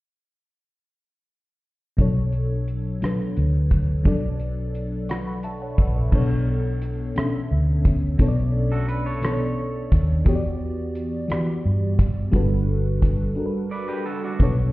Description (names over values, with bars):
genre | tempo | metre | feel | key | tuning
slow six-eight R&B | 58 BPM (dotted quarters) | 6/8 | straight | B minor | A4 = 440 Hz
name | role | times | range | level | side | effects
FM electric piano with soft pad layer | accompaniment | 2.0-14.7 s | B2 to C#6 | -26 LUFS | left 1 dB | chorus, tremolo
vintage muted fingered electric bass | bass | 2.0-14.7 s | G1 to G2 | -23 LUFS | equal | none
damped 70s drum kit | drums | 2.0-14.6 s | crash cymbal, hi-hat, kick drum, rim click | -20 LUFS | equal | none
electric guitar at the edge of break-up | second line | 8.7-10.1, 13.7-14.6 s | D4 to D5 | -31 LUFS | right 3 dB | plate reverb
room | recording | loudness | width
little or no reverb | heard muffled through a wall, stone room reverb, EQ | -20 LUFS | side -19 dB against mid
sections
2.0-6.1 A section; 6.1-14.7 B section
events
break 13.4-14.4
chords
2.0 Bm9; 10.3 Em9; 12.3 Gmaj9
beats
| 1.99 3.02 | 4.06 5.09 | 6.12 7.16 | 8.19 9.23 | 10.26 11.30 | 12.33 13.37 | 14.40